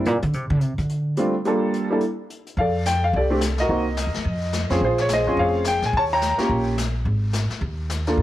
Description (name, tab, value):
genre	jazz piano trio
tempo	214 BPM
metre	4/4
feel	swing 61% on 8ths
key	unclear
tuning	A4 = 441 Hz
part	warm upright piano	melody	0.0-8.2 s	G3 to Bb5	-21 LUFS	equal	none
part	upright bass	bass	0.0-8.2 s	F1 to D3	-23 LUFS	equal	none
part	jazz brush drum kit	drums	0.1-8.2 s	brushed snare drum, hi-hat, kick drum, snare drum	-30 LUFS	left 3 dB	none
room	light reverb, small room ambience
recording	1960s-style stereo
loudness	-20 LUFS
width	side -14 dB against mid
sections	0.0-2.6 A section; 2.6-8.2 B section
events	upright bass solo 0.0-2.6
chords	0.3 F5 (rootless); 1.5 Gm7; 2.0 N.C.; 2.6 F69; 3.7 Cm7b5; 4.3 F7(no3); 4.8 Bbm9; 5.9 Eb7; 7.1 Ab5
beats	0.06 | 0.33 0.61 0.89 1.17 | 1.45 1.73 2.01 2.29 | 2.57 2.85 3.13 3.41 | 3.69 3.97 4.25 4.53 | 4.81 5.09 5.38 5.66 | 5.93 6.22 6.50 6.78 | 7.06 7.34 7.62 7.90 | 8.18